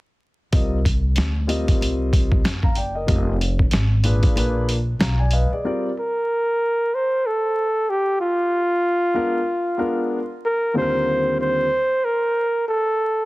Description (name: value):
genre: hip hop, jazz-hop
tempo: 94 BPM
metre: 4/4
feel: swing 59% on 16ths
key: unclear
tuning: A4 = 439 Hz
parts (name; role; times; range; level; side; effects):
- dark grand piano; accompaniment; 0.5-11.7 s; Eb2 to Bb5; -24 LUFS; left 1 dB; none
- upright bass; bass; 0.5-5.5 s; F1 to D2; -21 LUFS; equal; none
- boom bap sampler-style drum kit; drums; 0.5-5.5 s; hi-hat, kick drum, snare drum; -20 LUFS; equal; none
- breathy flugelhorn; melody; 6.0-13.3 s; F4 to C5; -19 LUFS; equal; tape echo
room: small room ambience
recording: heavily compressed radio sound, multiband compression, vinyl crackle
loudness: -18 LUFS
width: side -20 dB against mid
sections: 0.5-5.6 A section; 5.6-13.3 B section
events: kick muted 4.4-5.6; grand piano fill 4.7-5.6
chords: 0.5 Cm9; 3.1 Fm7; 4.4 Bb7b9; 5.6 Csus2; 8.2 Bb7b9; 10.7 Eb6